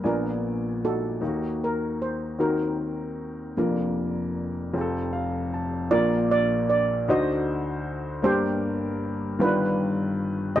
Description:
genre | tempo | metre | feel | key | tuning
gospel | 51 BPM (dotted quarters) | 6/8 | straight | Bb major | A4 = 441 Hz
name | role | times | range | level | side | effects
steel pan | melody | 0.0-10.6 s | Bb3 to Eb5 | -26 LUFS | right 2 dB | none
warm upright piano | accompaniment | 0.0-10.6 s | F1 to A5 | -26 LUFS | left 2 dB | none
room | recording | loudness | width
light reverb | dry, close 1970s-style studio recording | -23 LUFS | side -12 dB against mid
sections
0.0-5.9 A section; 5.9-10.6 B section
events
upright piano fill 4.7-5.9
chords
0.0 Bb7b9; 1.2 Ebm; 2.4 Ebm6; 3.6 Bb/F; 4.7 F; 5.9 Bb; 7.1 D7b9; 8.2 Gm; 9.4 G7b13

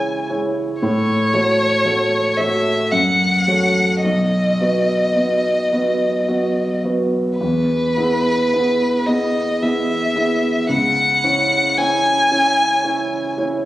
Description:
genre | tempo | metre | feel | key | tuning
classical, romantic duo for violin and grand piano | 55 BPM | 3/4 | uneven beats, rubato | E major | A4 = 439 Hz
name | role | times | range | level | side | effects
warm violin | melody | 0.0-13.4 s | B4 to G#5 | -18 LUFS | left 1 dB | none
warm grand piano | accompaniment | 0.0-13.7 s | B1 to C#5 | -19 LUFS | right 1 dB | none
room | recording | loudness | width
moderate scoring stage reverb, RT60 1.6 s | recorded on a phone in the room, club reverb, compression | -15 LUFS | side -15 dB against mid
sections
0.0-13.7 A section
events
none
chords
0.0 C#m; 0.8 A6; 2.9 F#m; 4.0 B; 7.4 E; 10.7 C#m

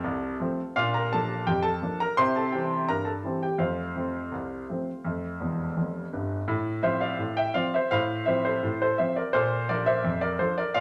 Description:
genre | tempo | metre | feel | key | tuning
ragtime piano | 84 BPM | 2/4 | straight | F major | A4 = 440 Hz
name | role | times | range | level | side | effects
clear concert grand piano | solo | 0.0-10.8 s | E1 to C6 | -27 LUFS | equal | none
room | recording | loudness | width
wet large studio reverb, RT60 0.9 s | none | -27 LUFS | mono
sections
0.0-6.5 A section; 6.5-10.8 B section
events
grand piano fill 5.4-6.5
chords
0.0 F; 0.7 Bb; 2.2 C; 3.6 F; 6.5 F/A; 9.3 Bb

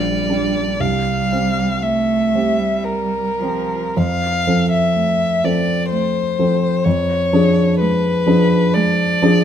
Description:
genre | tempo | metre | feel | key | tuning
classical, slow romantic movement for piano trio | 51-65 BPM | 3/4 | rubato | F major | A4 = 440 Hz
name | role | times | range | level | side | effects
warm violin | melody | 0.0-9.4 s | Bb4 to F5 | -19 LUFS | left 3 dB | none
rich cello | second line | 0.0-9.4 s | F3 to A3 | -23 LUFS | right 5 dB | none
warm grand piano | accompaniment | 0.0-9.4 s | Bb1 to A4 | -17 LUFS | equal | none
room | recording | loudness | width
moderate stone room reverb, RT60 1.1 s | none | -15 LUFS | side -9 dB against mid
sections
0.0-9.4 A section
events
none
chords
0.0 Gm/Bb; 0.8 C; 4.0 F; 6.9 Fdim7

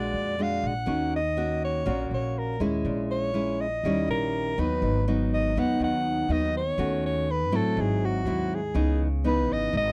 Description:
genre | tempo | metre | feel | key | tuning
bossa nova | 122 BPM | 4/4 | straight | Eb minor, G# minor from 4.8 s | A4 = 440 Hz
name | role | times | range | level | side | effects
warm soprano saxophone | melody | 0.0-9.9 s | F#4 to Gb5 | -31 LUFS | equal | none
nylon-string guitar | accompaniment | 0.0-9.9 s | G#2 to Gb4 | -30 LUFS | equal | none
upright bass | bass | 0.0-9.9 s | G#1 to A2 | -32 LUFS | equal | none
room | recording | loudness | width
little or no reverb | dry, close 1970s-style studio recording | -26 LUFS | mono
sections
0.0-4.8 A section; 4.8-9.9 B section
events
none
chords
0.0 Bb7b13; 0.9 Ebm7; 2.8 Bbm7b5; 3.8 Eb7b9; 4.8 G#m7; 6.8 D#m7b5; 7.8 G#7b13; 8.8 C#m9

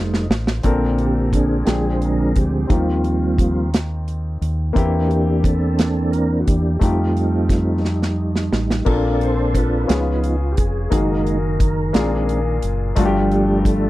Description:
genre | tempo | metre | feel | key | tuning
slow gospel | 58 BPM (dotted quarters) | 6/8 | straight | Bb major | A4 = 440 Hz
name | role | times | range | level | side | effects
clear grand piano | accompaniment | 0.0-13.9 s | G2 to C5 | -24 LUFS | left 4 dB | none
mellow tonewheel organ | sustained chords | 0.0-13.9 s | D3 to D5 | -20 LUFS | right 2 dB | slow rotary speaker, chorus vibrato
deep dub fingered electric bass | bass | 0.0-13.9 s | F1 to F2 | -21 LUFS | equal | none
modern studio drum kit | drums | 0.1-13.8 s | crash cymbal, hi-hat, kick drum, snare drum | -19 LUFS | equal | none
room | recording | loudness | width
light reverb | dry, close 1970s-style studio recording | -16 LUFS | side -16 dB against mid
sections
0.7-13.9 A section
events
drum fill 0.0-0.7, 7.8-8.9; tonewheel organ solo 0.7-13.9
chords
0.0 F7; 0.7 Bbmaj9; 1.7 Bb13; 2.7 Eb69; 4.8 C7/E; 6.8 F9; 8.9 Bbmaj7; 9.9 Db7; 10.9 Gb69; 11.9 Bb7; 13.0 Ebmaj9#11/G (rootless)

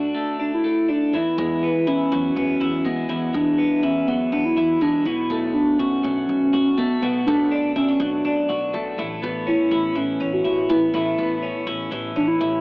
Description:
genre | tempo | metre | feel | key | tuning
jangly indie pop | 122 BPM | 4/4 | straight | E mixolydian | A4 = 440 Hz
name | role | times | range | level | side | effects
hollow clarinet-like synth lead | melody | 0.0-12.6 s | B3 to F#4 | -20 LUFS | equal | chorus, cassette tape
twelve-string electric guitar | arpeggios | 0.0-12.6 s | E2 to F#4 | -25 LUFS | left 1 dB | wide subtle chorus, cassette tape, analog delay
upright bass | bass | 0.0-12.6 s | A1 to E2 | -32 LUFS | equal | none
room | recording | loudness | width
wet small room reverb, RT60 0.6 s | home recording on cassette, AM radio sound | -18 LUFS | side -26 dB against mid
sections
0.0-1.1 A section; 1.1-12.6 B section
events
none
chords
0.0 D; 1.1 Eadd9; 5.1 Bm7; 9.0 Aadd9

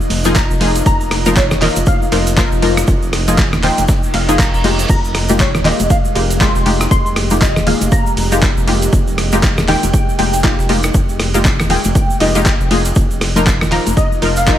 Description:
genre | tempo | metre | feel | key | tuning
deep house | 119 BPM | 4/4 | swing 59% on 16ths | F minor | A4 = 439 Hz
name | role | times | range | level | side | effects
deep dark ambient pad | sustained chords | 0.0-14.6 s | Ab3 to Eb5 | -24 LUFS | equal | chorus, built-in reverb, sidechain pumping
congas | percussion | 0.0-14.3 s | none | -22 LUFS | left 1 dB | none
egg shaker | percussion | 0.0-14.6 s | none | -28 LUFS | right 3 dB | none
round analog bass | bass | 0.1-14.6 s | Eb1 to F1 | -19 LUFS | equal | tube saturation, sidechain pumping
breakbeat sampler-style drum kit | drums | 0.1-14.6 s | hi-hat, snare drum | -30 LUFS | equal | none
dusty soul sampler-style drum kit | drums | 0.1-14.6 s | crash cymbal, handclaps, hi-hat, ride cymbal, rim click | -20 LUFS | right 1 dB | overdrive, small room reverb
filtered dub chord stab | stabs | 0.2-14.6 s | F3 to C5 | -19 LUFS | left 2 dB | analog chorus
soft round pluck | melody | 0.4-14.6 s | Db5 to C6 | -21 LUFS | equal | ensemble chorus, digital delay
electronic kick drum | drums | 0.4-14.6 s | none | -15 LUFS | equal | small room reverb
reverse cymbal | sound effects | 4.1-4.9 s | none | -25 LUFS | right 4 dB | none
room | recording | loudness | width
little or no reverb | vinyl crackle | -11 LUFS | side -11 dB against mid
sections
0.0-14.6 A section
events
reverse cymbal 4.1-4.9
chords
0.0 Ebsus2; 4.9 Fm11; 13.0 Ebsus2

